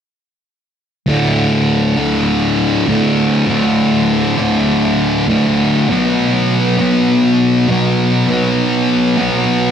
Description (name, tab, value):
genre	rock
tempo	100 BPM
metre	4/4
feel	straight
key	D major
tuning	A4 = 436 Hz
part	thick fuzz guitar	riff	1.1-9.7 s	D2 to B3	-12 LUFS	equal	distortion
room	wet plate reverb, RT60 3.7 s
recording	dreamy mix soaked in reverb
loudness	-12 LUFS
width	side -8 dB against mid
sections	1.1-9.7 A section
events	none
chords	1.1 D5; 5.9 B5